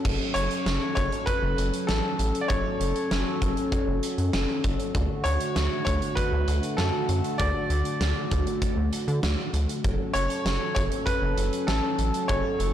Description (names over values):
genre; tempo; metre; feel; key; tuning
synth-pop; 98 BPM; 4/4; straight; F# minor; A4 = 436 Hz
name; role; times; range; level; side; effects
chorused pulse-width pad; sustained chords; 0.0-12.7 s; D3 to A4; -29 LUFS; equal; none
rubbery square bass; bass; 0.1-12.7 s; F#1 to D3; -26 LUFS; equal; transformer saturation
huge arena drum kit; drums; 0.1-12.7 s; crash cymbal, hi-hat, kick drum, snare drum; -30 LUFS; equal; soft clipping on kick
bright grand piano; melody; 0.3-12.7 s; A4 to D5; -30 LUFS; equal; tape echo
room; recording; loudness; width
light reverb, small room ambience; blown-out, overdriven recording, overdrive; -23 LUFS; side -10 dB against mid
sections
0.0-12.7 A section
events
none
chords
0.0 F#m; 4.9 D; 9.8 F#m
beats
| 0.05 0.66 1.27 1.89 | 2.50 3.11 3.72 4.33 | 4.95 5.56 6.17 6.78 | 7.40 8.01 8.62 9.23 | 9.85 10.46 11.07 11.68 | 12.29